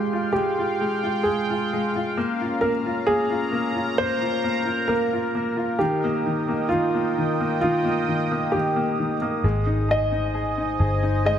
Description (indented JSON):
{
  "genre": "pop",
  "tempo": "66 BPM",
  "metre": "4/4",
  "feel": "straight",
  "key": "unclear",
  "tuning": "A4 = 440 Hz",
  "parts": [
    { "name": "warm concert grand piano", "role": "melody", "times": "0.0-11.4 s", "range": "F4 to Eb5", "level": "-25 LUFS", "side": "right 1 dB", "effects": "none" },
    { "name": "bright upright piano", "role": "accompaniment", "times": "0.0-11.4 s", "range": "Eb3 to Ab4", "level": "-26 LUFS", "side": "left 3 dB", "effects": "none" },
    { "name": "sweeping resonant pad", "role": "sustained chords", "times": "0.0-11.4 s", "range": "Ab3 to Eb6", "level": "-27 LUFS", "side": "right 2 dB", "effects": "chorus" },
    { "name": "vintage muted fingered electric bass", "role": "bass", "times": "9.4-11.4 s", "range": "G1 to Ab1", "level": "-23 LUFS", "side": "equal", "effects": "none" }
  ],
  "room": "light reverb",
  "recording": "none",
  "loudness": "-21 LUFS",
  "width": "side -9 dB against mid",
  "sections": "0.0-11.4 A section",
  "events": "none",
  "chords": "0.0 Fmadd9/Ab; 2.2 Bbm; 5.8 Eb; 9.4 Ab"
}